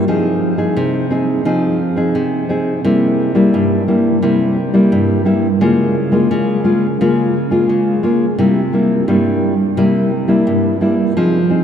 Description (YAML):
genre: samba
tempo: 86 BPM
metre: 4/4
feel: straight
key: unclear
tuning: A4 = 440 Hz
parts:
  - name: nylon-string guitar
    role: solo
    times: 0.0-11.6 s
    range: G2 to Ab4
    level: -12 LUFS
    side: equal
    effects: none
room: wet cathedral reverb, RT60 7.5 s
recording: in a vast, echoing space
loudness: -12 LUFS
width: side -8 dB against mid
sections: 0.0-11.2 A section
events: none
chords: 0.1 Fm7; 2.8 C7; 5.6 Bbm7/Db; 8.4 C7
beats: | 0.08 0.77 1.46 2.15 | 2.85 3.54 4.23 4.92 | 5.62 6.31 7.00 7.70 | 8.39 9.09 9.78 10.48 | 11.17